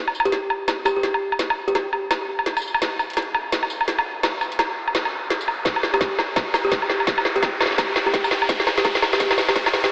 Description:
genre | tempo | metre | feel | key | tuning
half-time drum and bass | 169 BPM | 4/4 | swing 60% on 16ths, half-time | unclear | A4 = 442 Hz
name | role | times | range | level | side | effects
riser | sound effects | 2.0-9.9 s | none | -32 LUFS | equal | none
drum and bass drum kit | drums | 0.1-9.9 s | hi-hat, snare drum, tambourine, woodblock | -23 LUFS | equal | high-pass filter on hats, high-pass filter on snare, high-pass filter on perc, high-pass filter on room
kalimba | melody | 0.3-1.8, 5.9-9.9 s | G4 | -27 LUFS | equal | analog delay
electronic kick drum | drums | 5.7-9.6 s | none | -32 LUFS | equal | none
room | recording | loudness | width
wet lush hall reverb, RT60 1.8 s | dreamy mix soaked in reverb, high-pass filter, AM radio sound | -22 LUFS | mono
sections
0.0-9.9 A section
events
build-up 0.0-9.9; drum fill 0.0-9.9; filter sweep 0.0-9.9; riser 2.0-9.9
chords
none

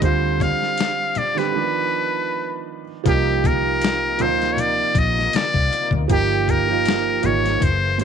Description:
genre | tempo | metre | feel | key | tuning
R&B, neo-soul | 79 BPM | 4/4 | swing 54% on 16ths | C minor | A4 = 445 Hz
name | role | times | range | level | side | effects
trumpet with metal mute | melody | 0.0-8.0 s | G4 to F5 | -21 LUFS | left 2 dB | slapback echo
warm upright piano | accompaniment | 0.0-8.0 s | D3 to G4 | -24 LUFS | right 15 dB | none
vintage muted fingered electric bass | bass | 0.0-8.0 s | F#1 to D2 | -24 LUFS | equal | none
boom bap sampler-style drum kit | drums | 0.0-8.0 s | hi-hat, kick drum, snare drum | -23 LUFS | left 3 dB | none
congas | percussion | 0.4-7.8 s | none | -30 LUFS | left 10 dB | none
overdriven tonewheel organ | sustained chords | 3.1-8.0 s | C3 to G#4 | -31 LUFS | left 13 dB | chorus vibrato, slow rotary speaker
room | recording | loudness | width
light reverb, studio reverb | 1960s-style stereo with parts hard left and right | -17 LUFS | side -7 dB against mid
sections
0.0-3.1 A section; 3.1-8.0 B section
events
break 1.5-3.1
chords
0.0 G7sus4/D; 1.5 Bdim; 3.1 Cm11; 6.1 Eb9/G

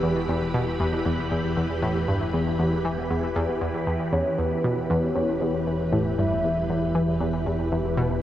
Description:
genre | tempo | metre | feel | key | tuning
ambient, sequencer-driven space music | 117 BPM | 4/4 | straight | E minor | A4 = 440 Hz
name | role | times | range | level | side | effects
phased string machine | sustained chords | 0.0-8.2 s | E3 to B5 | -26 LUFS | equal | ensemble chorus, phaser
analog pluck | riff | 0.0-8.2 s | E2 to E3 | -26 LUFS | equal | chorus, analog delay
fat analog bass | bass | 0.0-8.2 s | E1 | -34 LUFS | equal | none
soft octave-layered synth lead | melody | 4.1-6.9 s | B4 to E5 | -29 LUFS | equal | chorus, tremolo, analog delay
room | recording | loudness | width
wet huge ambient reverb, RT60 8.7 s | worn, warbling old tape, cassette tape, warbly pitch drift | -22 LUFS | side -12 dB against mid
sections
0.0-8.2 A section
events
none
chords
0.0 Em

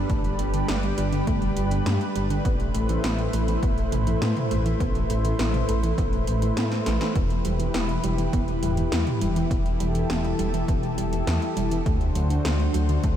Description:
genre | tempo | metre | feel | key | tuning
synthwave | 102 BPM | 4/4 | straight | E minor | A4 = 440 Hz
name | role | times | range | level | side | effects
lush unison pad | sustained chords | 0.0-13.2 s | D3 to C5 | -28 LUFS | left 1 dB | chorus, sidechain pumping
soft round pluck | arpeggios | 0.0-13.1 s | D3 to B3 | -31 LUFS | right 3 dB | chorus, analog delay
dark detuned saw bass | bass | 0.0-13.2 s | E1 to A2 | -26 LUFS | equal | sidechain pumping
80s electronic pad drums | drums | 0.1-13.2 s | hi-hat, snare drum, toms | -32 LUFS | equal | gated reverb on snare and toms
electronic kick drum | drums | 0.1-13.2 s | none | -26 LUFS | equal | none
room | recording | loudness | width
light reverb | none | -22 LUFS | side -10 dB against mid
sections
0.0-13.2 A section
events
drum fill 6.7-7.2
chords
0.0 Gadd9; 2.4 Amadd9; 7.2 Em; 11.9 D7

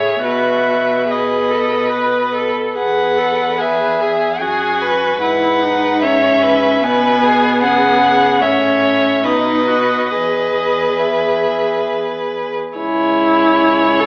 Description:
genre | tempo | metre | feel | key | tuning
classical, slow romantic movement for string quartet | 66-76 BPM | 3/4 | rubato | E major | A4 = 440 Hz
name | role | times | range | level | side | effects
rich violin | melody | 0.0-14.1 s | D#5 to G#5 | -17 LUFS | left 1 dB | none
clear violin | second line | 0.0-14.1 s | G#4 to C#5 | -17 LUFS | equal | none
rich viola | accompaniment | 0.0-14.1 s | B3 to B4 | -17 LUFS | equal | none
rich cello | bass | 0.0-14.1 s | C#2 to C#3 | -22 LUFS | equal | none
room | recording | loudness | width
wet recital hall reverb, RT60 1.4 s | AM radio sound | -12 LUFS | side -30 dB against mid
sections
0.0-12.8 A section; 12.8-14.1 B section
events
none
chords
0.2 B; 2.8 E; 5.2 E/G#; 7.6 C#5; 8.4 A; 9.2 B; 10.1 E; 12.8 C#m

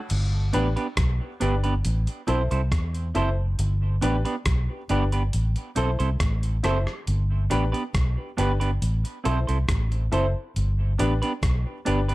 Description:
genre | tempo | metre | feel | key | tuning
roots reggae | 69 BPM | 4/4 | straight | G major | A4 = 440 Hz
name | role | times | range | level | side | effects
vintage muted fingered electric bass | bass | 0.1-12.1 s | F#1 to E2 | -23 LUFS | equal | none
dusty soul sampler-style drum kit | drums | 0.1-12.1 s | crash cymbal, hi-hat, kick drum, rim click | -29 LUFS | equal | none
clean electric guitar | accompaniment | 0.5-12.1 s | B3 to C5 | -29 LUFS | right 3 dB | dub echo
dark upright piano | stabs | 0.5-12.0 s | D4 to C5 | -30 LUFS | left 3 dB | none
room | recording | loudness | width
light reverb | none | -22 LUFS | side -18 dB against mid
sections
0.1-12.1 A section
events
none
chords
0.1 G; 1.8 Am; 3.6 G; 5.3 Am; 7.1 G; 8.8 Am; 10.6 G

